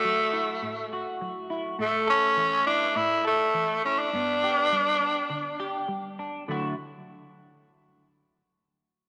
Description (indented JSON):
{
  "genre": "highlife",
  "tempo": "103 BPM",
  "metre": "4/4",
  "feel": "straight",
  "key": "D major",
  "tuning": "A4 = 439 Hz",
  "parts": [
    { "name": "raspy tenor saxophone", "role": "melody", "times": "0.0-5.9 s", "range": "A3 to E4", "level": "-26 LUFS", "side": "equal", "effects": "none" },
    { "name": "semi-hollow electric guitar", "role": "accompaniment", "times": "0.0-6.7 s", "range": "G2 to A4", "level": "-35 LUFS", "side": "equal", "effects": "analog chorus" }
  ],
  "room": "wet echo chamber reverb, RT60 2.5 s",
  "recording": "none",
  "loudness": "-26 LUFS",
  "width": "mono",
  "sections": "0.0-6.5 A section; 6.5-8.8 B section",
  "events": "none",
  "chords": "0.0 Dadd9 (rootless); 1.8 A; 4.1 G; 6.5 Dadd9",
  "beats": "0.04 0.62 1.21 | 1.79 2.37 2.96 3.54 | 4.12 4.70 5.29 5.87 | 6.45"
}